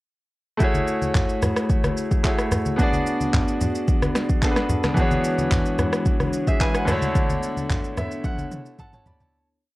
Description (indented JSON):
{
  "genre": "amapiano",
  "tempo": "110 BPM",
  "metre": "4/4",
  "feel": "straight",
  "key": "F# minor",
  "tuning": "A4 = 438 Hz",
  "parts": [
    { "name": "bright grand piano", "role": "accompaniment", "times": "0.6-9.5 s", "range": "D3 to B5", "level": "-25 LUFS", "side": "equal", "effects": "none" },
    { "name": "glass harmonica", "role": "sustained chords", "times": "0.6-9.3 s", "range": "G#3 to D5", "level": "-29 LUFS", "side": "left 1 dB", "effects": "sidechain pumping" },
    { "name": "deep house drum kit", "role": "drums", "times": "0.6-9.3 s", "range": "handclaps, kick drum, rim click, shaker, snare drum, toms", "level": "-22 LUFS", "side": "equal", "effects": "overdrive" },
    { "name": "congas", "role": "percussion", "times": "0.7-9.3 s", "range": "none", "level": "-26 LUFS", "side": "equal", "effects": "none" }
  ],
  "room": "little or no reverb",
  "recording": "worn, warbling old tape, cassette tape, warbly pitch drift",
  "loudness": "-20 LUFS",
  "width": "side -19 dB against mid",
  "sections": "0.6-9.3 groove",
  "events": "fade-out 7.2-9.3; grand piano fill 7.7-9.3; drum fill 8.2-9.3",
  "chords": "0.6 F#m9; 2.8 G#m7b5; 5.0 E13; 6.9 Bm11/D",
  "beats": "| 0.61 1.15 1.70 2.24 | 2.79 3.33 3.88 4.42 | 4.97 5.51 6.06 6.61 | 7.15 7.70 8.24 8.79"
}